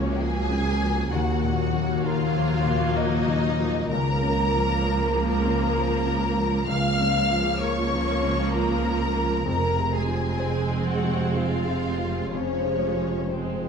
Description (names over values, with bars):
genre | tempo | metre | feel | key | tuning
cinematic, emotional film score for orchestra | 64 BPM | 3/4 | rubato | Bb minor | A4 = 440 Hz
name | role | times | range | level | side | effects
warm symphonic violin section | melody | 0.0-13.7 s | C5 to F6 | -30 LUFS | left 2 dB | none
warm symphonic violin section | second line | 0.0-13.7 s | C4 to F5 | -29 LUFS | left 1 dB | none
rich symphonic viola section | accompaniment | 0.0-13.7 s | F3 to C4 | -30 LUFS | right 2 dB | none
warm baby grand piano | accompaniment | 0.0-13.7 s | Db2 to C5 | -30 LUFS | left 3 dB | none
concert harp | arpeggios | 0.0-13.7 s | Db3 to C6 | -32 LUFS | left 10 dB | none
clear symphonic double bass section | bass | 0.0-13.7 s | F1 to Eb2 | -30 LUFS | right 4 dB | none
warm studio cello section | bass | 0.0-13.7 s | Db2 to F2 | -30 LUFS | right 2 dB | none
room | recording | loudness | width
moderate scoring stage reverb, RT60 1.9 s | dark, warm production | -22 LUFS | side -6 dB against mid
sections
0.0-13.7 A section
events
none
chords
0.0 Bbm/Db; 1.1 Ebmadd9; 3.9 Bbm/Db; 9.5 Fm